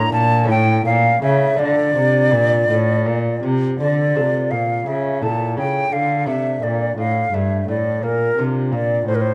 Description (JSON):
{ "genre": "classical, baroque-style sonata movement with continuo", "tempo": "56 BPM (dotted quarters)", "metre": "6/8", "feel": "uneven beats", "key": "D minor", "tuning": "A4 = 440 Hz", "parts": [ { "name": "hollow concert flute", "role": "melody", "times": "0.0-9.3 s", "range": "Bb4 to Bb5", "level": "-21 LUFS", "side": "equal", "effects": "none" }, { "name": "lute", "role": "accompaniment", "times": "0.0-9.3 s", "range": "G2 to Bb4", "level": "-28 LUFS", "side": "equal", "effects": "none" }, { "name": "warm cello", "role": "bass", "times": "0.0-9.3 s", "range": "G2 to D3", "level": "-22 LUFS", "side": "equal", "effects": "none" } ], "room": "moderate recital hall reverb, RT60 1.6 s", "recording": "close, detailed microphones", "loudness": "-18 LUFS", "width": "mono", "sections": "0.0-3.8 A section; 3.8-9.3 B section", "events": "none", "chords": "0.5 A; 1.6 Dm; 4.9 A; 5.9 D5; 8.0 Bb", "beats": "0.49 | 1.59 2.70 | 3.80 4.87 | 5.92 6.98 | 8.03 9.07" }